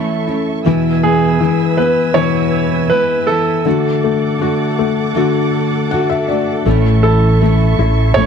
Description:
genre	pop ballad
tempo	80 BPM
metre	4/4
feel	straight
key	A major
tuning	A4 = 440 Hz
part	felt-muted upright piano	accompaniment	0.0-8.3 s	D3 to F#5	-17 LUFS	left 13 dB	none
part	rich studio string section	sustained chords	0.0-8.3 s	A4 to E6	-23 LUFS	right 4 dB	none
part	nylon-string guitar	arpeggios	0.0-8.3 s	E2 to F#4	-18 LUFS	right 4 dB	none
part	clear baby grand piano	melody	1.0-8.3 s	G#4 to C#5	-17 LUFS	right 3 dB	slapback echo
part	fretless electric bass	bass	6.7-8.3 s	A1	-12 LUFS	right 1 dB	none
room	little or no reverb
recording	dry, close 1970s-style studio recording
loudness	-12 LUFS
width	side -7 dB against mid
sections	0.0-8.3 A section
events	felt piano fill 5.5-6.7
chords	0.0 A; 0.7 E; 3.7 D; 6.7 A

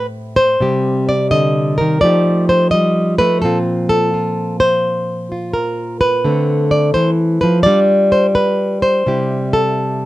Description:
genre	solo jazz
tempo	85 BPM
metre	4/4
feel	swing 68% on 8ths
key	unclear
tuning	A4 = 440 Hz
part	flamenco guitar	solo	0.0-10.1 s	A2 to Eb5	-13 LUFS	equal	none
room	light reverb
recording	close, detailed microphones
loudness	-13 LUFS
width	side -16 dB against mid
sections	0.0-10.1 A section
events	none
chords	0.0 Am7; 0.6 Cm; 2.0 F9; 3.4 Bbsus2; 6.2 Dm7; 7.7 G5; 9.1 C

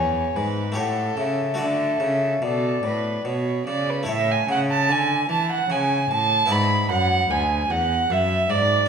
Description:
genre	classical, baroque-style sonata movement with continuo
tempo	74 BPM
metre	3/4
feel	straight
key	D major, A major from 4.1 s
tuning	A4 = 440 Hz
part	baroque flute	melody	0.0-8.9 s	D5 to B5	-27 LUFS	left 6 dB	none
part	dark violin	second line	0.0-8.9 s	A4 to B5	-23 LUFS	right 5 dB	none
part	harpsichord	accompaniment	0.0-8.9 s	D2 to D5	-31 LUFS	left 2 dB	none
part	rich cello	bass	0.0-8.9 s	D2 to E3	-25 LUFS	right 1 dB	none
room	wet recital hall reverb, RT60 1.4 s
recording	none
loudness	-20 LUFS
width	side -6 dB against mid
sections	0.0-4.1 A section; 4.1-8.9 A section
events	none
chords	0.0 E7; 0.8 A7; 1.6 D; 4.1 A; 6.5 E7

